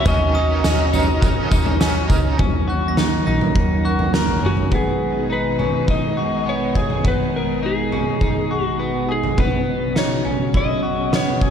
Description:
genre	dream pop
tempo	103 BPM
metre	4/4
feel	straight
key	G# minor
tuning	A4 = 444 Hz
part	electric slide guitar	melody	0.0-11.5 s	F#4 to E5	-24 LUFS	left 2 dB	ping-pong delay
part	crunchy overdriven guitar	accompaniment	0.0-2.4 s	D#3 to A#4	-27 LUFS	right 4 dB	tremolo, analog chorus
part	soft string machine	sustained chords	0.0-11.5 s	B2 to A#5	-23 LUFS	right 2 dB	ensemble chorus
part	electric guitar at the edge of break-up	arpeggios	0.0-11.5 s	B3 to A#4	-25 LUFS	left 2 dB	lush chorus, ping-pong delay
part	vintage muted picked electric bass	bass	0.0-4.7 s	F#1 to D#2	-22 LUFS	equal	none
part	glockenspiel with brass mallets	texture	0.0-5.0 s	C#6 to A#6	-33 LUFS	right 2 dB	ping-pong delay
part	oversized low-tuned drum kit	drums	0.1-11.5 s	kick drum, snare drum, tambourine, toms	-21 LUFS	equal	none
room	moderate concert hall reverb, RT60 2.5 s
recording	dark, warm production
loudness	-17 LUFS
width	side -8 dB against mid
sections	0.0-2.4 A section; 2.4-4.7 B section; 4.7-11.5 C section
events	none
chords	0.1 D#m7; 4.7 G#m; 9.4 F#sus4

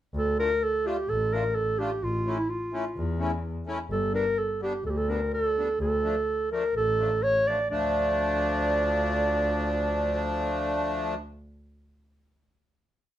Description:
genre	klezmer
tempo	126 BPM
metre	4/4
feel	straight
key	D harmonic minor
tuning	A4 = 436 Hz
part	rich double bass	bass	0.1-11.1 s	G1 to E2	-32 LUFS	equal	none
part	mellow clarinet	melody	0.2-11.1 s	E4 to D5	-26 LUFS	right 1 dB	none
part	accordion	accompaniment	0.4-11.1 s	F3 to F4	-30 LUFS	left 1 dB	light tremolo tuning
room	moderate studio reverb, RT60 0.6 s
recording	none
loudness	-24 LUFS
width	side -12 dB against mid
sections	0.1-7.7 A section; 7.7-11.6 final chord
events	none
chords	0.1 Dm; 2.0 A; 3.9 G; 5.8 Dm

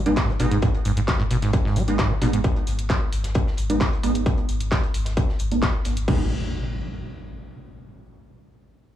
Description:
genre	driving peak-time techno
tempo	132 BPM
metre	4/4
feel	straight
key	G# minor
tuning	A4 = 436 Hz
part	warm sub bass	bass	0.0-6.3 s	G#1	-27 LUFS	left 1 dB	overdrive, sidechain pumping, low-pass filter
part	sub drop and impact	sound effects	0.0-0.6, 6.1-7.9 s	none	-31 LUFS	left 1 dB	none
part	rave stab	stabs	0.1-6.2 s	G#3 to D#4	-27 LUFS	right 2 dB	chorus, built-in reverb, cassette tape, sidechain pumping, analog delay
part	techno drum kit	drums	0.1-6.2 s	crash cymbal, handclaps, hi-hat	-32 LUFS	equal	overdrive
part	acid bass, saw	riff	0.2-2.4 s	G#2 to G#3	-25 LUFS	right 1 dB	sidechain pumping, analog delay
part	electronic kick drum	drums	0.2-6.2 s	none	-22 LUFS	equal	distortion, overdrive
part	open jazz drum kit	drums	0.2-6.0 s	hi-hat, snare drum	-39 LUFS	left 2 dB	sidechain pumping on hats, high-pass filter on hats, high-pass filter on snare, high-pass filter on room
room	digital ambience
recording	dry, gritty hardware recording, studio ambience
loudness	-20 LUFS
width	side -11 dB against mid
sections	0.0-6.1 A section; 6.1-7.9 B section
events	impact 0.0-0.6; filter sweep on synth stab 0.0-6.1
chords	0.0 G#m

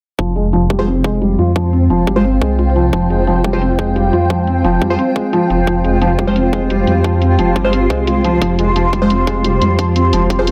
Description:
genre	dark technical drum and bass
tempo	175 BPM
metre	4/4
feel	straight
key	F minor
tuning	A4 = 440 Hz
part	swarming drone	sustained chords	1.0-10.5 s	Ab3 to C5	-24 LUFS	equal	built-in reverb, sidechain pumping
part	felt-muted upright piano	arpeggios	0.2-10.5 s	F3 to F4	-19 LUFS	equal	vintage 12-bit sampler grit, sidechain pumping, low-pass filter, digital delay
part	detuned saw bass	bass	0.2-10.5 s	F1 to F2	-19 LUFS	equal	chorus, overdrive, sidechain pumping
part	electronic hi-hat	drums	0.2-10.5 s	none	-30 LUFS	equal	low-pass filter on hats
part	electronic kick drum	drums	0.2-10.4 s	none	-23 LUFS	equal	high-pass filter on kick
part	granular cloud pad	texture	1.4-10.5 s	F4 to C6	-22 LUFS	equal	built-in reverb, sidechain pumping
part	band-passed chord stab	stabs	0.8-10.5 s	Ab3 to C5	-20 LUFS	equal	phaser, subtle chorus, digital delay
room	light reverb, digital ambience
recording	none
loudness	-14 LUFS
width	mono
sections	0.2-10.5 A section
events	filter sweep on drum 0.2-10.5; filter sweep on felt piano 0.2-10.5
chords	0.2 Fm

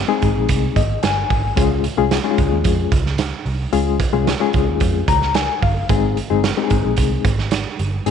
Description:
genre	uptempo 1960s-style soul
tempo	111 BPM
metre	4/4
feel	straight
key	Ab major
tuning	A4 = 439 Hz
part	reed electric piano	accompaniment	0.1-8.1 s	Ab3 to Bb5	-19 LUFS	left 11 dB	fast tremolo
part	vintage muted picked electric bass	bass	0.2-8.1 s	G1 to F2	-21 LUFS	right 1 dB	none
part	raw garage drum kit	drums	0.2-8.1 s	hi-hat, kick drum, snare drum	-20 LUFS	right 4 dB	none
room	small room ambience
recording	1960s-style stereo, tape saturation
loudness	-16 LUFS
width	side -7 dB against mid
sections	0.0-8.1 A section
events	reed electric piano fill 0.5-1.6, 4.8-5.9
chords	0.0 Ab; 1.6 Db; 5.9 Ab

